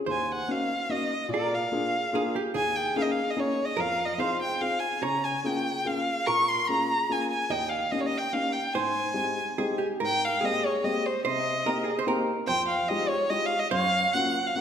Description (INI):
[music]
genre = musette waltz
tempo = 145 BPM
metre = 3/4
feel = straight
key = Ab major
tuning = A4 = 440 Hz
[part]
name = archtop guitar, miked and amplified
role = second line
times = 0.0-14.6 s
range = G4 to Eb5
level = -32 LUFS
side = right 3 dB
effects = none
[part]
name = dark violin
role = melody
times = 0.1-14.6 s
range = C5 to Db6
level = -27 LUFS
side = equal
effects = none
[part]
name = dark upright piano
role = accompaniment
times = 0.1-14.6 s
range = Eb2 to Ab4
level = -31 LUFS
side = left 2 dB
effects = none
[sound]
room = wet recital hall reverb, RT60 1.7 s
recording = none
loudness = -25 LUFS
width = side -8 dB against mid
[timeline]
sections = 0.1-10.0 A section; 10.0-14.6 B section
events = none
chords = 0.1 Ebm7; 1.3 Bb7; 2.6 Eb7sus4; 3.8 Fm7; 5.0 Db6; 6.3 Bbm7; 7.5 Eb7; 8.8 Abmaj7; 10.0 Abmaj9; 11.3 Cm7; 12.5 Fm9; 13.7 Gbmaj7